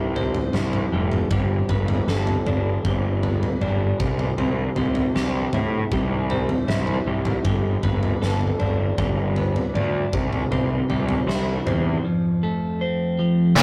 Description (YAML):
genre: quiet-loud alternative rock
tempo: 78 BPM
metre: 4/4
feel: straight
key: unclear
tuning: A4 = 435 Hz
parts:
  - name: twelve-string electric guitar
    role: arpeggios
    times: 0.0-13.6 s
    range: F2 to A4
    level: -27 LUFS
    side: equal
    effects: none
  - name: fuzz picked electric bass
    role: bass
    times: 0.0-13.6 s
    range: F1 to A2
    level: -26 LUFS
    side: equal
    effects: overdrive
  - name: big rock drum kit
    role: drums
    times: 0.2-13.6 s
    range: crash cymbal, kick drum, snare drum, toms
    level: -28 LUFS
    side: equal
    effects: none
  - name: distorted electric guitar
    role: riff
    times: 13.6 s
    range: Bb2 to F4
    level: -21 LUFS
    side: equal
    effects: overdrive
  - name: overdriven semi-hollow guitar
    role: riff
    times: 13.6 s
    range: Bb2 to D4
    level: -16 LUFS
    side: equal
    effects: none
room: light reverb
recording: rough rehearsal-room recording, tube saturation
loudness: -23 LUFS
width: mono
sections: 0.0-13.6 A section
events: none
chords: 0.0 C; 1.3 Gadd9; 4.0 C; 7.4 Gadd9; 10.1 C; 12.0 F